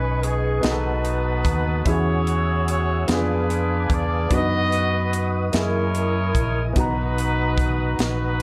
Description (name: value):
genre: slow gospel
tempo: 49 BPM (dotted quarters)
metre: 6/8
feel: straight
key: B major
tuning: A4 = 441 Hz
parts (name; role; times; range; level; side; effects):
- clear horn section; melody; 0.0-8.4 s; D4 to D#5; -28 LUFS; equal; none
- clear concert grand piano; accompaniment; 0.0-8.4 s; B2 to A#5; -29 LUFS; equal; none
- mellow tonewheel organ; sustained chords; 0.0-8.4 s; E4 to E6; -33 LUFS; equal; slow rotary speaker, chorus vibrato
- fingered electric bass; bass; 0.0-8.4 s; A#1 to F#2; -26 LUFS; equal; none
- crisp fusion drum kit; drums; 0.2-8.2 s; hi-hat, kick drum, snare drum; -28 LUFS; equal; none
room: light reverb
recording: dark, warm production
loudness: -22 LUFS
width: mono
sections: 0.0-8.4 A section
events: none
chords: 0.0 B69; 0.6 B7; 1.9 E69; 3.1 Fdim7; 4.3 B/F#; 5.5 F#13; 6.8 Bmaj7